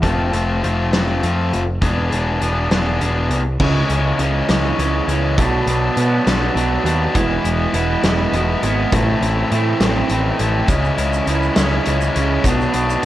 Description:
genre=indie rock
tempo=68 BPM (dotted quarters)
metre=6/8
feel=straight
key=unclear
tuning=A4 = 440 Hz
part: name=cranked stack guitar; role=riff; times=0.0-13.1 s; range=A2 to G#4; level=-19 LUFS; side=left 2 dB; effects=overdrive
part: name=growling picked electric bass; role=bass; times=0.0-13.1 s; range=E1 to B2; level=-20 LUFS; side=equal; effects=overdrive
part: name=loose indie drum kit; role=drums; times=0.0-13.1 s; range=crash cymbal, hi-hat, kick drum, snare drum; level=-21 LUFS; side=equal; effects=none
part: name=overdriven semi-hollow guitar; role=riff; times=3.6-13.1 s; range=A2 to E4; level=-23 LUFS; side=right 8 dB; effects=analog chorus, analog delay
part: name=tube shaker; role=percussion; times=10.7-13.0 s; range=none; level=-38 LUFS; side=right 9 dB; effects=none
room=little or no reverb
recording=worn, warbling old tape, cassette tape, warbly pitch drift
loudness=-15 LUFS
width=side -14 dB against mid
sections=0.0-3.6 A section; 3.6-13.1 B section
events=none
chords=0.0 F; 1.8 E7; 3.6 C#m; 5.4 Bm; 7.2 Eadd9; 8.9 Am; 10.7 C#m; 12.4 Bm

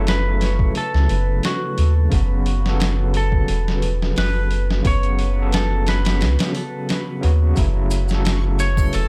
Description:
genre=trip hop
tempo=88 BPM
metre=4/4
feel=swing 53% on 16ths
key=F# minor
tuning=A4 = 440 Hz
part: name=clean lap steel guitar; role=melody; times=0.0-9.1 s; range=F#4 to C#5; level=-30 LUFS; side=equal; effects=tape echo
part: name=overdriven tine electric piano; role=accompaniment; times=0.0-9.1 s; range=C#3 to A4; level=-29 LUFS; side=equal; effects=tremolo, tape echo
part: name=deep dark ambient pad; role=sustained chords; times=0.2-9.1 s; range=B4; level=-36 LUFS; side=equal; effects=chorus, built-in reverb
part: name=soft dub sub bass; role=bass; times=0.0-9.1 s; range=E1 to D#2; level=-21 LUFS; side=equal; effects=tube saturation
part: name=trip hop sampler-style drum kit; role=drums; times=0.1-9.1 s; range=hi-hat, kick drum, snare drum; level=-25 LUFS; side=equal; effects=overdrive
part: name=maracas and triangle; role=percussion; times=7.6-9.1 s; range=none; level=-38 LUFS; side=equal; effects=analog delay
part: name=backwards swelling texture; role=texture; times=7.7-9.1 s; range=C#5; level=-45 LUFS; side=equal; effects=none
room=digital ambience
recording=echo-heavy mix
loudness=-19 LUFS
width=mono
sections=0.0-9.1 A section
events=none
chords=0.0 F#m7

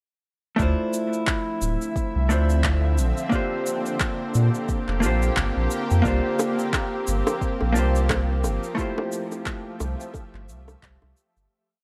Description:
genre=sunset chillout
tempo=88 BPM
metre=4/4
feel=swing 58% on 16ths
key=F major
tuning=A4 = 440 Hz
part: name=vintage hollow-body jazz guitar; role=accompaniment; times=0.6-10.5 s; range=A3 to C5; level=-29 LUFS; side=equal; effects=vintage 12-bit sampler grit, tape echo
part: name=shimmering ambient pad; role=sustained chords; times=1.4-11.5 s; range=D3 to E5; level=-32 LUFS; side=equal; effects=chorus, built-in reverb
part: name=warm sub bass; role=bass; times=0.6-11.5 s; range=D1 to Bb2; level=-24 LUFS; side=equal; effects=none
part: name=electronic cabasa and handclaps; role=drums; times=0.6-11.5 s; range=none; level=-32 LUFS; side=equal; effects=none
part: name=electronic kick drum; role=drums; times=0.6-11.0 s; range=none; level=-31 LUFS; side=equal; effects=none
part: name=bongos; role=percussion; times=6.4-11.1 s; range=none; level=-31 LUFS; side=equal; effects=none
room=light reverb, digital ambience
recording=dry, gritty hardware recording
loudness=-24 LUFS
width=mono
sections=0.6-11.5 groove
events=fade-out 7.9-11.5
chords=0.6 Dm9; 3.0 Bb69; 6.1 C7sus4; 8.8 Fmaj9

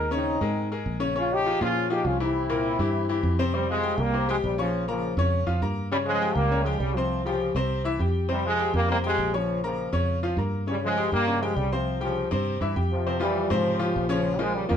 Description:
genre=latin, salsa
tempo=202 BPM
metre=4/4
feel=straight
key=F harmonic minor from 3.5 s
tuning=A4 = 441 Hz
part: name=bright trombone section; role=melody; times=0.0-14.8 s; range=C3 to G4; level=-26 LUFS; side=equal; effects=none
part: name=bright upright piano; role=accompaniment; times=0.0-14.8 s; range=Bb2 to Db6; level=-28 LUFS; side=left 4 dB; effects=none
part: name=fingered electric bass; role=bass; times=0.0-14.8 s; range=Bb1 to Bb2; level=-28 LUFS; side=right 1 dB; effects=none
room=moderate studio reverb, RT60 0.6 s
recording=heard from further back in the room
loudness=-23 LUFS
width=side -8 dB against mid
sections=0.0-3.5 A section; 3.5-13.1 B section; 13.1-14.8 C section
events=none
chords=0.0 Eb7sus4; 1.2 Bbm7; 2.3 C7; 3.5 Fmadd9; 4.7 Bbm; 5.9 Gm7b5; 7.1 C; 8.3 Fmadd9; 9.5 Bbm; 10.7 Gm7b5; 11.9 C; 13.1 Fmadd9; 14.3 Bbm

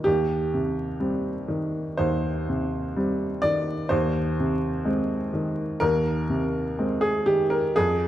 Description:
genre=neoclassical minimalist piano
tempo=63 BPM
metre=4/4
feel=rubato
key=unclear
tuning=A4 = 442 Hz
part: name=warm upright piano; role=solo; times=0.0-8.1 s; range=Eb2 to D5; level=-22 LUFS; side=equal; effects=none
room=wet recital hall reverb, RT60 1.6 s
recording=dark, warm production, vinyl crackle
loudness=-23 LUFS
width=side -13 dB against mid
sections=0.0-8.1 A section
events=none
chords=0.1 Cm/Eb; 3.9 Ab/Eb

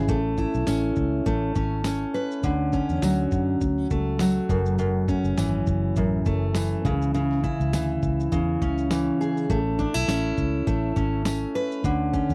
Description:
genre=acoustic pop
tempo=102 BPM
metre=4/4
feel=swing 55% on 16ths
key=A major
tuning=A4 = 443 Hz
part: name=fingerpicked steel-string acoustic guitar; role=accompaniment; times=0.0-12.3 s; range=F#2 to B4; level=-26 LUFS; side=equal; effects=none
part: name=fingered electric bass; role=bass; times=0.0-12.3 s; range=F#1 to F#2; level=-30 LUFS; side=equal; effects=none
part: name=dusty soul sampler-style drum kit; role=drums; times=0.1-12.3 s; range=kick drum, shaker, snare drum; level=-32 LUFS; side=equal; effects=none
part: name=tambourine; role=percussion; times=0.7-11.4 s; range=none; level=-43 LUFS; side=equal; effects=none
room=little or no reverb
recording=dry, close 1970s-style studio recording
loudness=-24 LUFS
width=mono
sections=0.1-12.3 A section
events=none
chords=0.1 Aadd9; 2.4 Dmaj7; 4.5 F#m7; 6.8 C#m; 9.5 Aadd9; 11.8 Dmaj7(no3)

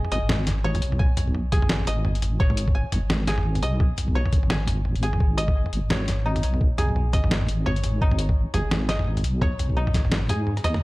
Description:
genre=half-time drum and bass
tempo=171 BPM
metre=4/4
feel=swing 59% on 16ths, half-time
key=G# minor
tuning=A4 = 440 Hz
part: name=koto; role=arpeggios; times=0.0-10.8 s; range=D#4 to G#5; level=-30 LUFS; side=equal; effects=low-pass filter, tape echo
part: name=deep soft wobble bass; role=bass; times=0.0-10.8 s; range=G#1 to G#2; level=-24 LUFS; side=equal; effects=chorus
part: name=boom bap sampler-style drum kit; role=drums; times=0.0-10.8 s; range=hi-hat, rim click, snare drum, toms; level=-27 LUFS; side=equal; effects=small room ambience
part: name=electronic kick drum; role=drums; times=1.0-10.0 s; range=none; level=-22 LUFS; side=equal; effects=small room ambience
room=little or no reverb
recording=dark, warm production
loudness=-21 LUFS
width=side -21 dB against mid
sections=0.0-10.8 A section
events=drop 0.0-10.8; drum fill 10.6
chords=0.0 G#m

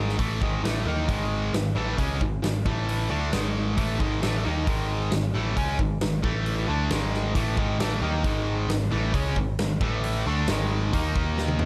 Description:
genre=hard rock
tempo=134 BPM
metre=4/4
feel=straight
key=unclear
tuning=A4 = 440 Hz
part: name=distorted electric guitar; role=riff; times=0.0-11.7 s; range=G#2 to D#4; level=-29 LUFS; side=equal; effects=overdrive
part: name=picked electric bass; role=bass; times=0.0-11.7 s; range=G#1 to D#2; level=-30 LUFS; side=equal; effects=none
part: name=big rock drum kit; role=drums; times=0.1-11.7 s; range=hi-hat, kick drum, snare drum, toms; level=-32 LUFS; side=equal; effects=none
room=light reverb, small room ambience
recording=none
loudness=-26 LUFS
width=mono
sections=0.0-11.7 A section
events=drum fill 11.4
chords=0.0 G#5; 2.7 A5; 3.1 G#5; 6.2 A5; 6.7 G#5; 9.8 A5; 10.3 G#5; 10.9 D#5

